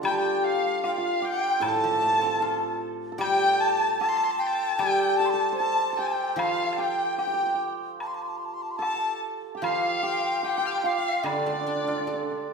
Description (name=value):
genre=chinese traditional, Chinese chamber ensemble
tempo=75 BPM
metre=4/4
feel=straight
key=unclear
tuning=A4 = 440 Hz
part: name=hammered dulcimer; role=second line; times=0.0-12.5 s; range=D4 to C5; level=-30 LUFS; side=right 6 dB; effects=none
part: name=rich erhu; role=second line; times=0.0-12.5 s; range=D5 to G6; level=-29 LUFS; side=left 4 dB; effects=none
part: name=guzheng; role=accompaniment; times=0.0-12.5 s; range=A2 to A4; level=-31 LUFS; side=left 2 dB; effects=none
part: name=bright large dizi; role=melody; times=0.1-12.5 s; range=D5 to C6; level=-27 LUFS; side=equal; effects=none
part: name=woodblock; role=percussion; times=0.1-11.4 s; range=none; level=-36 LUFS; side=left 3 dB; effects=none
room=wet recital hall reverb, RT60 1.4 s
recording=recorded in a church or concert hall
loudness=-23 LUFS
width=side -5 dB against mid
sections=0.0-12.5 A section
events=none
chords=none